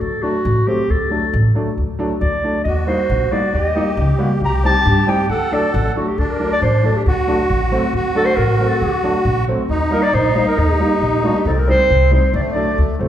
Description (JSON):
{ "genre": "klezmer", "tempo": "136 BPM", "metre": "2/4", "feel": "straight", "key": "D phrygian dominant", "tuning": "A4 = 441 Hz", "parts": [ { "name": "dark clarinet", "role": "melody", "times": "0.0-12.8 s", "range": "F#4 to Bb5", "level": "-19 LUFS", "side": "equal", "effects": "none" }, { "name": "upright bass", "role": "bass", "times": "0.0-13.1 s", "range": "A1 to G2", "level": "-18 LUFS", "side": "equal", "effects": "none" }, { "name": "clear upright piano", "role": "accompaniment", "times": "0.2-13.1 s", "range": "F#3 to F#4", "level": "-22 LUFS", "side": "equal", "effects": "none" }, { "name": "musette accordion", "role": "second line", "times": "2.7-13.0 s", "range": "A3 to A4", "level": "-21 LUFS", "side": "equal", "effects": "none" } ], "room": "wet recital hall reverb, RT60 1.4 s", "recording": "heard from further back in the room", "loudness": "-14 LUFS", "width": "side -10 dB against mid", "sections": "0.0-6.2 A section; 6.2-13.1 B section", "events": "clarinet solo 0.0-6.2", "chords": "0.0 D; 2.7 Eb; 4.4 Cm; 5.3 D; 9.7 Eb; 11.5 Cm; 12.3 D" }